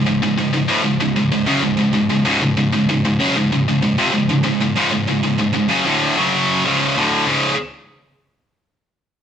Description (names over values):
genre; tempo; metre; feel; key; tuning
metal; 96 BPM; 4/4; straight; unclear; A4 = 438 Hz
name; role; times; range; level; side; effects
heavy high-gain guitar; solo; 0.0-7.5 s; C#2 to F#3; -15 LUFS; equal; distortion
room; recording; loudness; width
moderate stone room reverb, RT60 1.1 s; band playing live in one room; -15 LUFS; side -8 dB against mid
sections
0.0-7.3 A section; 7.3-9.2 B section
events
none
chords
0.0 C#5